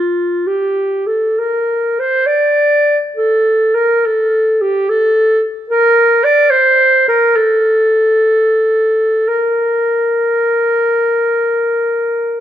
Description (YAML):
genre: classical, free, expressive piece for unaccompanied clarinet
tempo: 53-75 BPM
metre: 4/4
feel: rubato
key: Bb major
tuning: A4 = 440 Hz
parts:
  - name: mellow clarinet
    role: solo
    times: 0.0-12.4 s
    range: F4 to D5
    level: -11 LUFS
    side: equal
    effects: none
room: light reverb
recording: close, detailed microphones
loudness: -11 LUFS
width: side -11 dB against mid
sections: 0.0-12.4 A section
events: none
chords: none